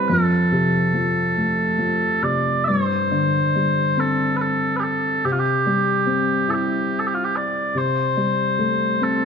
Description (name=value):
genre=celtic folk, Celtic slow air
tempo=47 BPM (dotted quarters)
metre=6/8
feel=rubato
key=unclear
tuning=A4 = 443 Hz
part: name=mellow small bagpipes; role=melody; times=0.0-9.2 s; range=F4 to E5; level=-20 LUFS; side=right 1 dB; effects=none
part: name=dark upright piano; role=accompaniment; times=0.0-9.2 s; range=F2 to E4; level=-21 LUFS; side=left 2 dB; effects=none
room=moderate concert hall reverb, RT60 2.0 s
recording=dark, warm production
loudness=-18 LUFS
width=side -6 dB against mid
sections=0.0-2.7 A section; 2.7-9.2 B section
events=none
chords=0.1 F; 2.7 Gsus4; 5.2 C; 7.8 Am7/C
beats=| 0.10 1.38 | 2.69 3.98 | 5.24 6.50 | 7.75 9.01